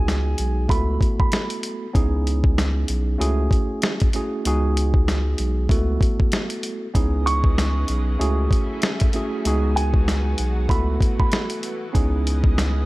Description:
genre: hip hop, boom-bap hip-hop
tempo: 96 BPM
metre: 4/4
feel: swing 57% on 16ths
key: C# minor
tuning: A4 = 440 Hz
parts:
  - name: dark upright piano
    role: melody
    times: 0.0-1.5, 7.3-11.5 s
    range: G#5 to C#6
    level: -29 LUFS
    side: right 3 dB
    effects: high-pass filter, low-pass filter, tape echo
  - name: tine electric piano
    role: accompaniment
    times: 0.0-12.9 s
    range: G#3 to A4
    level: -26 LUFS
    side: right 2 dB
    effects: medium stereo tremolo, cassette tape, high-pass filter, low-pass filter
  - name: saturated sub bass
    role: bass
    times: 0.0-12.8 s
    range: B1 to C#2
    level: -21 LUFS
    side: equal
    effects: none
  - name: dusty soul sampler-style drum kit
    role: drums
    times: 0.1-12.7 s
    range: hi-hat, kick drum, snare drum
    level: -21 LUFS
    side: equal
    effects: none
  - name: lush unison pad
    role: sustained chords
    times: 7.1-12.9 s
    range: C#3 to D#5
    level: -35 LUFS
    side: left 1 dB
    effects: chorus, high-pass filter, low-pass filter
room: little or no reverb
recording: none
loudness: -19 LUFS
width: side -19 dB against mid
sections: 0.0-12.9 A section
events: none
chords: 0.0 G#m7/C#; 0.7 B7sus4/C#; 1.9 C#m9; 3.2 F#m9/C#; 4.5 G#m7/C#; 5.7 B7sus4/C#; 7.0 C#m9; 8.2 F#m9/C#; 9.4 G#m7/C#; 10.7 B7sus4/C#; 11.9 C#m9

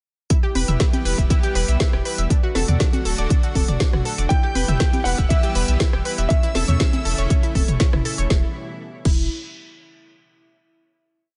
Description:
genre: progressive house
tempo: 120 BPM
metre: 4/4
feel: straight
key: E dorian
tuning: A4 = 440 Hz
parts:
  - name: lush unison pad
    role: sustained chords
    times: 0.3-8.5 s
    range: B2 to G4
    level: -33 LUFS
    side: equal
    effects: chorus, sidechain pumping
  - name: analog pluck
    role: arpeggios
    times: 0.3-9.3 s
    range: C#4 to E6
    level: -31 LUFS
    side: equal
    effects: chorus, sidechain pumping, tape echo
  - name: deep house drum kit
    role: drums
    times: 0.3-9.2 s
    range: crash cymbal, hi-hat, rim click, snare drum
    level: -29 LUFS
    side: equal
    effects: none
  - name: electronic kick drum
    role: drums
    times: 0.3-9.2 s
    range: none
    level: -21 LUFS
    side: equal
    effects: none
  - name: saturated sub bass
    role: bass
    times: 0.6-9.3 s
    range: D1 to E2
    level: -25 LUFS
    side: equal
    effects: sidechain pumping
  - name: electronic congas and toms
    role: percussion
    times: 0.6-8.0 s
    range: none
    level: -28 LUFS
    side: equal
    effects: overdrive, sidechain pumping on perc, sidechain pumping on toms
  - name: dark baby grand piano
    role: melody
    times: 4.3-7.8 s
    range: E5 to G5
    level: -31 LUFS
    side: equal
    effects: tape echo
  - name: soft supersaw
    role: second line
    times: 4.3-7.8 s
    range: E6 to G6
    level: -36 LUFS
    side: equal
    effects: vintage 12-bit sampler grit, sidechain pumping, tape echo
room: little or no reverb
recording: nothing above 10.6 kHz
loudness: -20 LUFS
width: mono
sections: 0.3-8.3 drop; 8.3-10.3 final chord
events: drop 0.3-8.3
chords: 0.3 Em; 2.3 D; 4.3 Em; 6.3 A/E; 8.3 Em

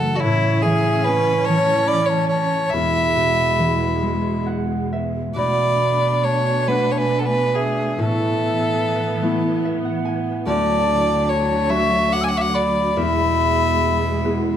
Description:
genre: celtic folk, Celtic slow air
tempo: 47 BPM (dotted quarters)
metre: 6/8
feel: uneven beats, rubato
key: E mixolydian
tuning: A4 = 440 Hz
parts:
  - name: clear fiddle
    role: melody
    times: 0.0-14.6 s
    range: E4 to G#5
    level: -21 LUFS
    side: right 1 dB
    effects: none
  - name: bright reedy baroque flute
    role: second line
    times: 0.0-14.6 s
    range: C#5 to E6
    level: -24 LUFS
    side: left 5 dB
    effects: none
  - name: concert harp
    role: accompaniment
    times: 0.0-14.6 s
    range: D2 to G#5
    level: -22 LUFS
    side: equal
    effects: none
  - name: clear studio string section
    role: sustained chords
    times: 0.0-14.6 s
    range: D2 to D4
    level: -25 LUFS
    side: right 2 dB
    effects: none
room: moderate recital hall reverb, RT60 1.5 s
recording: dark, warm production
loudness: -17 LUFS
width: side -9 dB against mid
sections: 0.0-5.4 A section; 5.4-14.6 B section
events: harp fill 4.0-5.4, 9.2-10.5, 14.3-14.6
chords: 0.2 A; 2.7 E; 5.4 Bm7; 8.0 Asus2; 10.5 D; 13.0 E

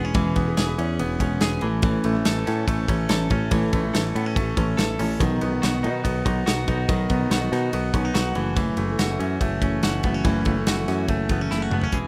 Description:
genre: jangly indie pop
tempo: 143 BPM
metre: 4/4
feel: straight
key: unclear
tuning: A4 = 443 Hz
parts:
  - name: picked steel-string acoustic guitar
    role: accompaniment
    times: 0.0-12.1 s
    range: F#2 to B4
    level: -30 LUFS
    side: equal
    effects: none
  - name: direct-recorded clean electric guitar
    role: arpeggios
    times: 0.0-12.1 s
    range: D#3 to A4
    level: -30 LUFS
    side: equal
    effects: digital delay
  - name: picked electric bass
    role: bass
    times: 0.0-12.1 s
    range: E1 to B2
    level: -28 LUFS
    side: equal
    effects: none
  - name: modern studio drum kit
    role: drums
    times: 0.1-12.0 s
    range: hi-hat, kick drum, ride cymbal, snare drum, toms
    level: -28 LUFS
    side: equal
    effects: none
room: light reverb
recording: rough home demo mix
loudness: -23 LUFS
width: mono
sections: 0.0-11.9 A section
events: drum fill 11.5-11.9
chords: 0.0 E6; 1.6 A; 5.2 B; 8.4 F#m7

